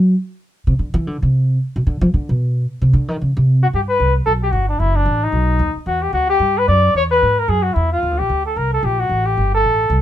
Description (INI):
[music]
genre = jazz, small-group swing and bop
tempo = 224 BPM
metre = 4/4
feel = swing 60% on 8ths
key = G major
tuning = A4 = 440 Hz
[part]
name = upright bass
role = bass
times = 0.0-10.0 s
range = F#1 to F#3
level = -16 LUFS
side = equal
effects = none
[part]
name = warm flugelhorn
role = melody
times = 3.6-10.0 s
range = D4 to D5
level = -17 LUFS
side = left 2 dB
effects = none
[sound]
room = little or no reverb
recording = close, detailed microphones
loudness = -15 LUFS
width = side -11 dB against mid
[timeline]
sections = 0.0-3.7 A section; 3.7-10.0 B section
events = upright bass solo 0.0-3.7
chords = 0.0 N.C.; 0.5 Cadd9; 1.6 Bm; 2.7 N.C.; 3.7 G; 4.8 F#m7; 5.3 B; 5.9 Em7; 6.9 Eadd9; 8.0 Ebmaj7 (rootless); 9.1 Gsus2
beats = 0.25 | 0.52 0.78 1.05 1.32 | 1.59 1.85 2.12 2.39 | 2.65 2.92 3.19 3.46 | 3.73 3.99 4.26 4.53 | 4.80 5.07 5.34 5.60 | 5.87 6.14 6.41 6.68 | 6.95 7.21 7.48 7.75 | 8.02 8.29 8.56 8.82 | 9.09 9.36 9.63 9.90